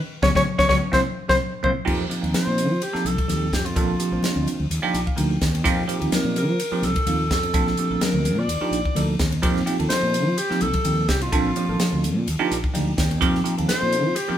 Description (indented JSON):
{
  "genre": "electric jazz fusion",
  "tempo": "127 BPM",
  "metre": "4/4",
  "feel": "swing 54% on 16ths",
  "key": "F mixolydian",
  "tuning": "A4 = 443 Hz",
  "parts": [
    { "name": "clear alto saxophone", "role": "melody", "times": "0.2-14.4 s", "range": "F4 to D5", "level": "-24 LUFS", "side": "left 1 dB", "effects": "none" },
    { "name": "bell-like tine electric piano", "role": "accompaniment", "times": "0.2-14.4 s", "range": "F3 to G5", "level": "-24 LUFS", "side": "right 2 dB", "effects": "medium stereo tremolo, phaser" },
    { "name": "mellow fretless electric bass", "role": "bass", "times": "0.2-14.3 s", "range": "A1 to F3", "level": "-26 LUFS", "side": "equal", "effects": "none" },
    { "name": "crisp fusion drum kit", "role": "drums", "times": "0.2-14.3 s", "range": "crash cymbal, hi-hat, kick drum, ride cymbal, snare drum", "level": "-26 LUFS", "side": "equal", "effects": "none" },
    { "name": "congas", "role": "percussion", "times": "0.2-14.2 s", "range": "none", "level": "-30 LUFS", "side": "left 5 dB", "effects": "none" }
  ],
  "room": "wet stone room reverb, RT60 1.0 s",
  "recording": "band playing live in one room",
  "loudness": "-19 LUFS",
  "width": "side -10 dB against mid",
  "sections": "0.0-1.9 A section; 1.9-14.4 B section",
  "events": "band accent 0.0-1.9; alto saxophone solo 0.0-1.9; drum fill 1.5-1.9; tine electric piano fill 4.7-5.7, 12.5-13.2",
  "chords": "0.0 Db7sus4; 0.9 C7; 1.9 F7sus4; 3.8 Bbmaj9; 4.7 Ebmaj9; 5.7 F7sus4; 7.5 Bbmaj9; 8.5 Ebmaj9; 9.4 F7sus4; 11.3 Bbmaj9; 12.3 Ebmaj9; 13.2 F7sus4"
}